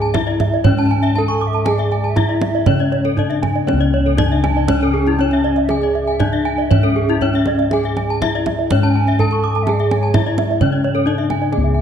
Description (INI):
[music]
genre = Balinese gamelan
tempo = 119-133 BPM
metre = 4/4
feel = straight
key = C# pelog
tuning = A4 = 440 Hz
[part]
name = gamelan-type bronze metallophone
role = melody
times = 0.0-11.8 s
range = C#4 to A4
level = -19 LUFS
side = left 1 dB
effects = none
[part]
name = gamelan-type bronze metallophone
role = arpeggios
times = 0.0-11.8 s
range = E4 to C#6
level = -24 LUFS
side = left 6 dB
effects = none
[part]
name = gamelan-type bronze metallophone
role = arpeggios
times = 0.0-11.8 s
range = G#4 to D6+35c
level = -23 LUFS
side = right 6 dB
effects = none
[part]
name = gamelan-type bossed gongs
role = bass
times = 0.0-11.8 s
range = C#2 to G#4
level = -19 LUFS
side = left 1 dB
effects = none
[part]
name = kendang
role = percussion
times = 0.1-11.6 s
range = none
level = -21 LUFS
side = right 3 dB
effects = none
[part]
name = bright baroque flute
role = second line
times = 0.8-10.5 s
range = C#5 to A5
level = -28 LUFS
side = right 5 dB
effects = none
[sound]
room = moderate concert hall reverb, RT60 2.4 s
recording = dark, warm production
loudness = -14 LUFS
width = side -8 dB against mid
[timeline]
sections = 0.0-11.5 A section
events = none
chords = none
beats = 0.15 0.66 1.16 | 1.67 2.17 2.67 3.18 | 3.68 4.19 4.69 5.20 | 5.70 6.20 6.71 7.21 | 7.72 8.22 8.71 9.20 | 9.68 10.15 10.61 11.07 | 11.53